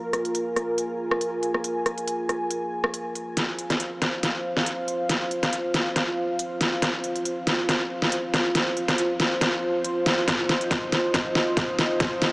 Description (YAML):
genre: deep dubstep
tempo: 139 BPM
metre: 4/4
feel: swing 54% on 16ths, half-time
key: F minor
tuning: A4 = 440 Hz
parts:
  - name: dark analog pad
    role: sustained chords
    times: 0.0-12.3 s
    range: F4 to Ab5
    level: -26 LUFS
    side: equal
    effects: chorus, vintage 12-bit sampler grit
  - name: dubstep drum kit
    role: drums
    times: 0.1-12.3 s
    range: hi-hat, rim click, snare drum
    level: -24 LUFS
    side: equal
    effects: none
  - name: electronic kick drum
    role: drums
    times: 10.3-12.1 s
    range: none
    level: -37 LUFS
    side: equal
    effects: none
room: moderate huge ambient reverb, RT60 4.7 s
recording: small speaker sound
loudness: -22 LUFS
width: side -24 dB against mid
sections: 0.0-3.4 A section; 3.4-12.3 B section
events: filter sweep on analog synth pad 0.0-3.4; build-up 3.4-12.3; drum fill 3.4-12.3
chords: 0.0 Fm; 3.4 F5